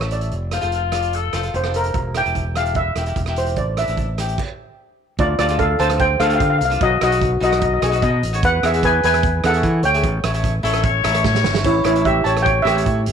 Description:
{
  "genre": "calypso",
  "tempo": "148 BPM",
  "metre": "4/4",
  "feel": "straight",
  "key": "unclear",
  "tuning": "A4 = 439 Hz",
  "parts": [
    { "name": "steel pan", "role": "melody", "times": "0.0-13.1 s", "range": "E4 to A5", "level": "-18 LUFS", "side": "equal", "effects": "none" },
    { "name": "cavaquinho", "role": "accompaniment", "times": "0.0-13.0 s", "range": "D4 to E5", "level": "-27 LUFS", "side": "left 2 dB", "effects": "none" },
    { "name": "modern bright fingered electric bass", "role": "bass", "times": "0.0-13.1 s", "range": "E1 to E3", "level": "-22 LUFS", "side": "equal", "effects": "none" },
    { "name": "loose indie drum kit", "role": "drums", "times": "0.0-13.1 s", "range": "crash cymbal, hi-hat, kick drum, rim click, snare drum, splash cymbal", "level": "-24 LUFS", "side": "right 3 dB", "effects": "none" },
    { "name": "raspy alto saxophone", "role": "second line", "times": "0.5-1.4, 10.6-11.5 s", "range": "F4 to C#5", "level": "-23 LUFS", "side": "left 12 dB", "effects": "none" }
  ],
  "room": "moderate plate reverb, RT60 1.7 s, small room reverb",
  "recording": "1960s-style stereo",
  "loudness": "-16 LUFS",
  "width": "side -7 dB against mid",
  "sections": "0.0-5.2 A section; 5.2-13.1 B section",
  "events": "stop 4.4-5.2; drum fill 11.3-11.7",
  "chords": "0.3 F6; 2.0 Edim; 3.6 Asus4; 4.4 N.C.; 5.2 Dm7; 6.8 B; 8.4 E7; 10.0 A7"
}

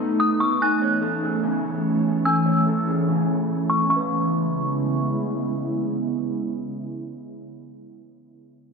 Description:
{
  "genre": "hip hop",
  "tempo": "146 BPM",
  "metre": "4/4",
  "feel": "half-time",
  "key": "C# minor",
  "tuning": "A4 = 439 Hz",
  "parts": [
    { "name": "ethereal airy pad", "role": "sustained chords", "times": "0.0-7.2 s", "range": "C#3 to E4", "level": "-23 LUFS", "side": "right 1 dB", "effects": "ensemble chorus, built-in reverb, low-pass filter" },
    { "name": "electric guitar at the edge of break-up", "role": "arpeggios", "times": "0.0-7.3 s", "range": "C#4 to A5", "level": "-30 LUFS", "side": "left 1 dB", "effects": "wide subtle chorus, low-pass filter, ping-pong delay" },
    { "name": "dark detuned synth bell", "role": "melody", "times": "0.2-5.1 s", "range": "C#6 to F#6", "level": "-24 LUFS", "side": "left 1 dB", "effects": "chorus, phaser, low-pass filter, ping-pong delay" }
  ],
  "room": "moderate lush hall reverb, RT60 2.0 s",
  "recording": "dark, warm production",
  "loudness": "-20 LUFS",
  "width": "side -4 dB against mid",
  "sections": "0.0-3.9 A section; 3.9-7.2 B section",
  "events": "filter sweep 0.0-3.9",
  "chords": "0.0 B7; 0.6 Amaj7; 3.9 C#m7"
}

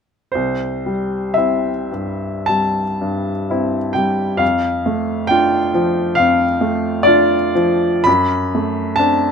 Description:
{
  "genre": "classical, romantic nocturne for solo piano",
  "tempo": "51-69 BPM",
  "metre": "4/4",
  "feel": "rubato",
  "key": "C major",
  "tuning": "A4 = 438 Hz",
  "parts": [
    { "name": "clear baby grand piano", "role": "solo", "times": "0.3-9.3 s", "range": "C2 to B5", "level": "-15 LUFS", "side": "equal", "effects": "none" }
  ],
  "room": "little or no reverb",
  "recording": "close, detailed microphones",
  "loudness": "-15 LUFS",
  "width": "side -6 dB against mid",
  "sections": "0.4-9.3 A section",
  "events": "none",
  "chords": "0.4 C; 4.4 Dm/F; 8.1 D7/F#"
}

